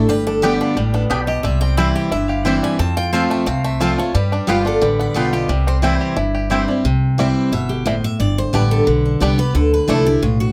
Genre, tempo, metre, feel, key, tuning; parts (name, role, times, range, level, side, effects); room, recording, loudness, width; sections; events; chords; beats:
bluegrass; 178 BPM; 4/4; straight; C major; A4 = 441 Hz
bluegrass banjo; melody; 0.0-10.0 s; G3 to G4; -27 LUFS; equal
picked steel-string acoustic guitar; melody; 0.0-10.5 s; D4 to B5; -24 LUFS; equal
picked steel-string acoustic guitar; accompaniment; 0.0-10.5 s; F2 to G4; -22 LUFS; equal
upright bass; bass; 0.0-10.5 s; G1 to G2; -22 LUFS; equal
mandolin; stabs; 0.4-6.6 s; B3 to A5; -25 LUFS; equal
moderate small room ambience, RT60 0.5 s; -17 LUFS; mono
0.0-6.8 A section; 6.8-10.5 A section
0.1 G; 1.4 C; 2.8 F; 4.1 G7; 5.5 C; 8.2 G; 9.6 Dmadd9
| 0.09 0.43 0.77 1.10 | 1.44 1.78 2.12 2.45 | 2.79 3.13 3.47 3.81 | 4.14 4.48 4.82 5.16 | 5.50 5.83 6.17 6.51 | 6.85 7.18 7.52 7.86 | 8.20 8.54 8.87 9.21 | 9.55 9.89 10.23